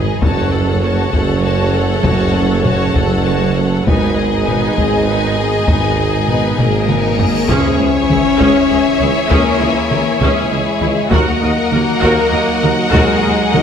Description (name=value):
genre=cinematic, epic orchestral film score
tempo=66 BPM (dotted quarters)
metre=6/8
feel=straight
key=C# dorian from 7.5 s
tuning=A4 = 440 Hz
part: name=rich symphonic violin section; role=melody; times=0.0-13.6 s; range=G#4 to A5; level=-25 LUFS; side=left 5 dB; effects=none
part: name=warm symphonic violin section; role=second line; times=0.0-13.6 s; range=G#4 to F#5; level=-22 LUFS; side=left 3 dB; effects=none
part: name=rich symphonic viola section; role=accompaniment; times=0.0-13.6 s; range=C#4 to D#5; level=-22 LUFS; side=right 1 dB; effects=none
part: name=mellow French horn section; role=sustained chords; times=0.0-13.6 s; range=G#3 to B4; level=-19 LUFS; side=left 3 dB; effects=none
part: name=rich symphonic string section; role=sustained chords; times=0.0-13.6 s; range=C#4 to G#5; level=-23 LUFS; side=left 2 dB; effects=none
part: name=warm trombone section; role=sustained chords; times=0.0-13.6 s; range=C#3 to E4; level=-25 LUFS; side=right 3 dB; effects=none
part: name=rich symphonic cello section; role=bass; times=0.0-13.6 s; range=C#2 to G#2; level=-22 LUFS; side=right 2 dB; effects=none
part: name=warm studio double bass section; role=bass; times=0.0-13.6 s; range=F#1 to D#2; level=-22 LUFS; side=right 3 dB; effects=none
part: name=warm tuba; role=bass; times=0.0-13.6 s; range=F#1 to D#2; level=-21 LUFS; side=right 3 dB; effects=none
part: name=taiko ensemble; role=drums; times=0.2-13.6 s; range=none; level=-19 LUFS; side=left 1 dB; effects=none
part: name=cymbal swell and sub drop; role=sound effects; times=7.0-9.3 s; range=none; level=-27 LUFS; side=left 1 dB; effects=none
part: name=timpani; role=percussion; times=7.5-8.4 s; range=C#3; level=-24 LUFS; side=left 1 dB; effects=none
room=wet concert hall reverb, RT60 1.9 s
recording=none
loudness=-12 LUFS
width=side -8 dB against mid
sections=0.0-7.5 A section; 7.5-13.6 B section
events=drum fill 0.0, 6.6-7.5; cymbal swell 7.0-7.5; impact 7.5-9.3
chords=0.2 F#m; 3.9 G#m; 7.5 C#m; 11.1 D#m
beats=| 0.23 1.14 | 2.05 2.96 | 3.86 4.77 | 5.68 6.59 | 7.49 8.40 | 9.31 10.21 | 11.12 12.03 | 12.93